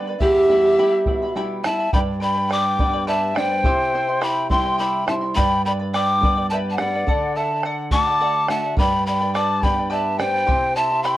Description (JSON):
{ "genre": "andean folk, Andean ensemble", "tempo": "70 BPM (dotted quarters)", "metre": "6/8", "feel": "straight", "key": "unclear", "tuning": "A4 = 440 Hz", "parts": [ { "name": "charango", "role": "accompaniment", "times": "0.0-11.2 s", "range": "E4 to C6", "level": "-27 LUFS", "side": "right 1 dB", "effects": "none" }, { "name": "flamenco guitar", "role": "accompaniment", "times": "0.0-11.2 s", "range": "E2 to G4", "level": "-27 LUFS", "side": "right 1 dB", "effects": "none" }, { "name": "breathy polished pan flute", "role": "melody", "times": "0.2-11.2 s", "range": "G4 to D6", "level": "-20 LUFS", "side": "equal", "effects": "none" }, { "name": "breathy bright large quena", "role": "second line", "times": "0.2-11.2 s", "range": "C5 to A5", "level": "-25 LUFS", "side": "left 2 dB", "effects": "none" }, { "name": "bombo", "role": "percussion", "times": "0.2-11.2 s", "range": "none", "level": "-22 LUFS", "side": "equal", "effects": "none" } ], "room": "light reverb", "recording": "worn, warbling old tape, cassette tape, warbly pitch drift", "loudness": "-17 LUFS", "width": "side -15 dB against mid", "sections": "0.0-1.9 A section; 1.9-11.2 A section", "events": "none", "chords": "0.2 Em; 1.9 G; 3.6 C; 5.4 G; 7.1 D; 8.8 G; 10.5 C" }